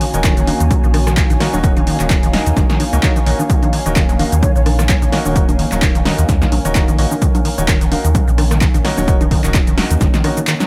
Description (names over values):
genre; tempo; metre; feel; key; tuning
acid house; 129 BPM; 4/4; swing 56% on 16ths; Eb minor; A4 = 440 Hz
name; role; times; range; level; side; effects
warbly tape-like pad; sustained chords; 0.0-10.7 s; Eb3 to Bb4; -29 LUFS; equal; chorus, built-in reverb, phaser, sidechain pumping
deep acid bass; riff; 0.0-10.7 s; Eb3 to Bb3; -24 LUFS; equal; overdrive, subtle chorus, cassette tape, analog delay
punchy analog drum machine; drums; 0.0-10.7 s; congas, handclaps, hi-hat, rim click, shaker, snare drum; -23 LUFS; equal; overdrive, analog delay
airy breathy pad; texture; 0.0-10.7 s; Eb4 to Ab5; -28 LUFS; equal; chorus, sidechain pumping
bright grand piano; stabs; 0.1-10.4 s; Eb4 to F5; -27 LUFS; equal; analog delay
saturated sub bass; bass; 0.1-10.1 s; Eb1 to Eb2; -20 LUFS; equal; sidechain pumping
electronic kick drum; drums; 0.2-10.1 s; none; -17 LUFS; equal; overdrive
breathy mellow concert flute; melody; 4.4-4.6 s; Db5; -29 LUFS; equal; analog delay
room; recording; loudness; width
light reverb; echo-heavy mix; -15 LUFS; mono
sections
0.0-10.7 A section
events
kick drops out 10.5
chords
0.0 Ebm7